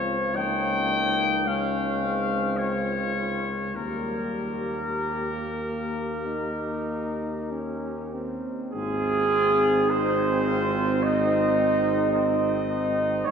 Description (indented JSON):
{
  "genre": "classical, hymn-like piece for brass band",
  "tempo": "47-56 BPM",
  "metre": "4/4",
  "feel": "rubato",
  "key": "Ab major",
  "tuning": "A4 = 435 Hz",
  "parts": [
    { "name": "mellow trumpet section", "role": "melody", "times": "0.0-13.3 s", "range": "C4 to G5", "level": "-30 LUFS", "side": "left 4 dB", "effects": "none" },
    { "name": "warm flugelhorn", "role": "second line", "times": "0.0-13.3 s", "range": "Db4 to Eb5", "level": "-27 LUFS", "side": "right 3 dB", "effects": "none" },
    { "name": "clear trombone", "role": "accompaniment", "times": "0.0-13.3 s", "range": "F3 to Eb4", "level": "-32 LUFS", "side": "right 1 dB", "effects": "none" },
    { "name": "warm euphonium", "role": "accompaniment", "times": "0.0-13.3 s", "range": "Bb3 to Eb4", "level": "-33 LUFS", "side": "left 3 dB", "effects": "none" },
    { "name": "warm tuba", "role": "bass", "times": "0.0-13.3 s", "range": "Ab1 to Eb2", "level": "-31 LUFS", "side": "equal", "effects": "none" }
  ],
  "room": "wet cathedral reverb, RT60 6.4 s",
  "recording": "heard from further back in the room",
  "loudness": "-23 LUFS",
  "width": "side -7 dB against mid",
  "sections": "0.0-8.7 A section; 8.7-13.3 B section",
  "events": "none",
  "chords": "0.0 Bbm/Db; 3.8 Eb; 8.7 Ab",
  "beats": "0.35 1.47 2.58 | 3.76 4.99 6.26 7.52 | 8.74 9.89 11.02 12.12 | 13.27"
}